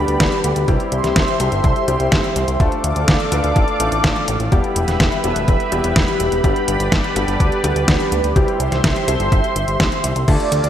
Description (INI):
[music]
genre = italo disco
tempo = 125 BPM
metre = 4/4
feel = straight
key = unclear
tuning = A4 = 440 Hz
[part]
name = lush unison pad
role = sustained chords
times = 0.0-10.7 s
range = G4 to D6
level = -20 LUFS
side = equal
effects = chorus, phaser, vintage 12-bit sampler grit
[part]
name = clear grand piano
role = stabs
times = 0.0-10.7 s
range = G3 to B4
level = -24 LUFS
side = left 3 dB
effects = digital delay
[part]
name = fat analog bass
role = bass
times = 0.0-10.7 s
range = D1 to D2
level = -21 LUFS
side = equal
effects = none
[part]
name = detuned 8-bit digital drum machine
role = drums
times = 0.1-10.7 s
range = crash cymbal, hi-hat, snare drum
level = -21 LUFS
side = equal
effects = overdrive
[part]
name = electronic kick drum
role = drums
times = 0.2-10.4 s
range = none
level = -18 LUFS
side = equal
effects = overdrive
[part]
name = mellow synth brass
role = melody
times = 10.3-10.7 s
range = D5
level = -20 LUFS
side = right 6 dB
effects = chorus
[sound]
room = wet lush hall reverb, RT60 1.8 s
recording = bright 1980s-style digital production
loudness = -15 LUFS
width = side -10 dB against mid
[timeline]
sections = 0.0-10.7 A section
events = none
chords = 0.0 G; 0.7 C; 2.6 Dm; 4.5 Em; 6.4 G; 8.4 C